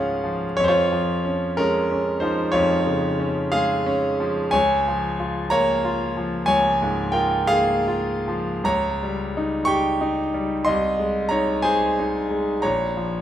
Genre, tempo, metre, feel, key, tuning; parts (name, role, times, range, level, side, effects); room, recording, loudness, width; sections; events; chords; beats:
classical, romantic nocturne for solo piano; 60 BPM (dotted quarters); 12/8; uneven beats, rubato; A4 = 440 Hz
bright concert grand piano; solo; 0.0-13.2 s; Bb1 to Db6; -19 LUFS; equal
wet recital hall reverb, RT60 1.8 s; minimal, uncompressed stereo recording; -19 LUFS; side -11 dB against mid
0.0-13.2 A section
0.0 Db; 0.6 Db/F; 4.5 Bbm7/Db; 8.7 Eb7/Db; 10.7 Ab/C; 12.6 Bbm
| 0.58 1.60 2.55 3.54 | 4.54 5.52 6.49 7.50 | 8.66 9.67 10.65 11.63 | 12.64